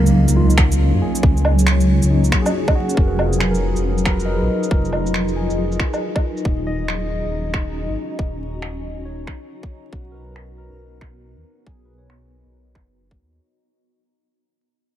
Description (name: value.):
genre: future garage.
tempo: 138 BPM.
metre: 4/4.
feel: swing 65% on 16ths.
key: unclear.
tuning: A4 = 440 Hz.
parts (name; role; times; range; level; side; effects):
barky tine electric piano; accompaniment; 0.0-13.6 s; Bb3 to Eb5; -27 LUFS; left 2 dB; overdrive, phaser, sidechain pumping, tape echo.
granular cloud pad; sustained chords; 0.0-13.4 s; F#3 to Bb5; -22 LUFS; right 1 dB; built-in reverb, sidechain pumping.
dark detuned saw bass; bass; 0.0-13.4 s; Eb1 to Gb2; -19 LUFS; equal; sidechain pumping.
impact; sound effects; 0.0-1.2 s; none; -28 LUFS; equal; none.
electronic shaker, finger snaps and woodblock; drums; 0.1-12.9 s; none; -25 LUFS; right 1 dB; overdrive, low-pass filter on perc, low-pass filter on snare, low-pass filter on room.
electronic kick drum; drums; 0.6-13.2 s; none; -19 LUFS; equal; overdrive.
room: light reverb, digital ambience.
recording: vinyl crackle.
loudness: -16 LUFS.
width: side -12 dB against mid.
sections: 0.0-13.4 A section.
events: fade-out 0.0-13.4; impact 0.0-1.2.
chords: 0.0 Dbsus4; 3.0 Fm7b5; 6.4 Ebm7; 9.9 Bmaj7.